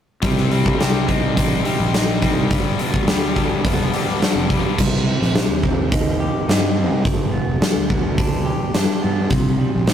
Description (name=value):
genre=quiet-loud alternative rock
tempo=106 BPM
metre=4/4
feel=straight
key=C minor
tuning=A4 = 440 Hz
part: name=electric guitar through a small old amp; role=arpeggios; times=0.2-9.9 s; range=G2 to G4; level=-25 LUFS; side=right 2 dB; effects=none
part: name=high-gain distorted guitar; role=riff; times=0.2-4.8 s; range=G2 to C4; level=-22 LUFS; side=left 5 dB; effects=distortion
part: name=fuzz fingered electric bass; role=bass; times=0.2-9.9 s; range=F1 to G2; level=-22 LUFS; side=equal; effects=overdrive
part: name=huge arena drum kit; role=drums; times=0.2-9.9 s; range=crash cymbal, hi-hat, kick drum, snare drum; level=-19 LUFS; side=equal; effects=none
room=moderate studio ambience, RT60 0.5 s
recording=rough rehearsal-room recording, tube saturation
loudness=-16 LUFS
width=side -9 dB against mid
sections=0.2-4.8 A section; 4.8-9.9 B section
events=none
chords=0.2 Cm; 2.5 G; 4.8 Cm; 7.1 G; 9.3 Cm